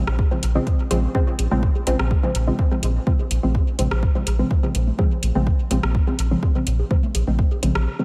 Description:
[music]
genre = dub techno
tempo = 125 BPM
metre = 4/4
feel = straight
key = Bb minor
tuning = A4 = 437 Hz
[part]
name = filtered dub chord stab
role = stabs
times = 0.0-8.0 s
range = Db3 to C4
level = -27 LUFS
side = equal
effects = chorus, phaser, sidechain pumping, dub echo
[part]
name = round analog bass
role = bass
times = 0.0-7.9 s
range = Bb1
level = -24 LUFS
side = equal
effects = sidechain pumping
[part]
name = deep house drum kit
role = drums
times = 0.1-7.8 s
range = hi-hat, rim click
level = -33 LUFS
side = equal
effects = small room ambience, dub echo
[part]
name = electronic kick drum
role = drums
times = 0.2-7.5 s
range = none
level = -22 LUFS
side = equal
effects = small room ambience
[part]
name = bongos and congas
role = percussion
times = 0.2-7.6 s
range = none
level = -37 LUFS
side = equal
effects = none
[sound]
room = light reverb, digital ambience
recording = none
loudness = -21 LUFS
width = mono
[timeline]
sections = 0.0-8.0 A section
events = filter sweep on synth stab 0.0-8.0; break 7.9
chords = 0.0 Bbm9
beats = 0.19 0.67 | 1.15 1.63 2.11 2.59 | 3.07 3.55 4.03 4.51 | 4.99 5.47 5.95 6.43 | 6.91 7.39 7.87

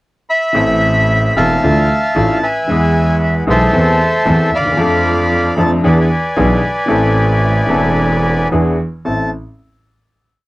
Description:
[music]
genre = tango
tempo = 114 BPM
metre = 4/4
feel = rubato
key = A harmonic minor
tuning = A4 = 436 Hz
[part]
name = bandoneon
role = melody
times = 0.3-9.3 s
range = A4 to B5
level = -15 LUFS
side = equal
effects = none
[part]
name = bright upright piano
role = accompaniment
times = 0.5-9.3 s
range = E1 to A4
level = -16 LUFS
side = left 1 dB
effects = none
[part]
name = clear double bass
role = bass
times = 0.6-9.3 s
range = E1 to F2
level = -16 LUFS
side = right 1 dB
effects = none
[sound]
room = light reverb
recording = dry, close 1970s-style studio recording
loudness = -11 LUFS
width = side -19 dB against mid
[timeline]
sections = 0.0-0.6 pickup bar; 0.6-9.1 A section; 9.1-10.5 final chord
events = none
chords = 0.0 N.C.; 0.6 Am; 1.6 Dmadd9; 2.7 E; 3.7 Amadd9/E; 4.8 Dm/F; 5.8 E7; 6.9 Am; 8.5 E7; 9.1 Am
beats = 0.03 | 0.56 1.10 1.63 2.16 | 2.69 3.21 3.74 4.27 | 4.79 5.32 5.84 6.37 | 6.90 7.43 7.96 8.51 | 9.05

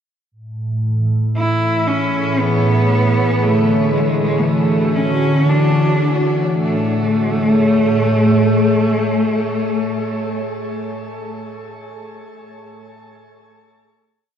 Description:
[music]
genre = ambient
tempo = 58 BPM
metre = 3/4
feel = straight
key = A major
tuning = A4 = 441 Hz
[part]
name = glassy FM pad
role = sustained chords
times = 0.5-10.4 s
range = A2 to C#5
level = -17 LUFS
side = equal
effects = ensemble chorus, built-in reverb
[part]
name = bright cello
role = melody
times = 1.4-10.4 s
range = G#3 to E4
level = -19 LUFS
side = equal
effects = ping-pong delay
[sound]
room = wet shimmer reverb, RT60 8.3 s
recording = worn, warbling old tape, cassette tape, warbly pitch drift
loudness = -14 LUFS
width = side -8 dB against mid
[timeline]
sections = 0.3-6.5 A section; 6.5-9.6 final chord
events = none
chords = 0.3 Amaj7; 3.4 Dmaj7; 6.5 Amaj7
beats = | 0.32 1.35 2.38 | 3.42 4.45 5.49 | 6.52 7.56 8.59

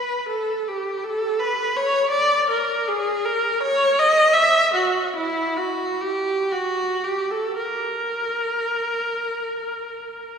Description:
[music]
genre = classical, free, expressive piece for unaccompanied viola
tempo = 25-57 BPM (dotted quarters)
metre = 6/8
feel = rubato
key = unclear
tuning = A4 = 439 Hz
[part]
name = rich viola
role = solo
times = 0.0-10.4 s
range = E4 to E5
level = -20 LUFS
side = equal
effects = none
[sound]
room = wet church reverb, RT60 3.2 s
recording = recorded in a church or concert hall, small room reverb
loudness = -19 LUFS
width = side -6 dB against mid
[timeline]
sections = 0.0-10.4 A section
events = none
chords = none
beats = | 0.30 1.42 | 2.50 3.63 | 4.78 6.05 | 7.58 9.17

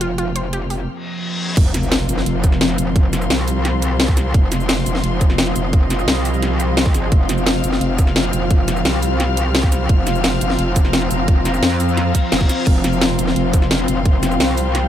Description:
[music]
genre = dark technical drum and bass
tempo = 173 BPM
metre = 4/4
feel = straight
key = unclear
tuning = A4 = 440 Hz
[part]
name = deep dark ambient pad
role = sustained chords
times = 0.0-14.9 s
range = F3 to Bb5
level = -23 LUFS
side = equal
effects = chorus, built-in reverb, sidechain pumping
[part]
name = wide unison pluck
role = arpeggios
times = 0.0-0.8 s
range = F4 to C5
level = -26 LUFS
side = equal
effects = sidechain pumping, ping-pong delay
[part]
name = metallic wobble bass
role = bass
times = 0.0-14.9 s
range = F1 to F2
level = -20 LUFS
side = equal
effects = chorus, overdrive
[part]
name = drum and bass drum kit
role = drums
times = 0.0-14.8 s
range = crash cymbal, hi-hat, shaker, snare drum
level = -20 LUFS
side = left 1 dB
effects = overdrive
[part]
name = dark studio string section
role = texture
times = 0.0-14.9 s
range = C4 to F6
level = -24 LUFS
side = left 4 dB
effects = sidechain pumping
[part]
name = reverse cymbal and sub drop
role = sound effects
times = 1.0-3.0, 12.1-12.7 s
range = none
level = -27 LUFS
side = left 2 dB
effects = none
[part]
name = electronic kick drum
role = drums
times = 1.6-14.1 s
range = none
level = -14 LUFS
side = equal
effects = overdrive
[sound]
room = little or no reverb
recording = none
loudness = -14 LUFS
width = side -11 dB against mid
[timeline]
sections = 0.0-1.6 A section; 1.6-14.9 B section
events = filter sweep on ambient pad 0.0-1.6; break 0.9-1.6; reverse cymbal 1.0-1.6, 12.1-12.7; drop 1.6-14.9; impact 1.6-3.0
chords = 0.0 F5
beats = | 0.18 0.53 0.88 1.22 | 1.57 1.92 2.26 2.61 | 2.96 3.30 3.65 4.00 | 4.34 4.69 5.04 5.38 | 5.73 6.08 6.42 6.77 | 7.12 7.46 7.81 8.16 | 8.51 8.85 9.20 9.55 | 9.89 10.24 10.59 10.93 | 11.28 11.63 11.97 12.32 | 12.67 13.01 13.36 13.71 | 14.05 14.40 14.75

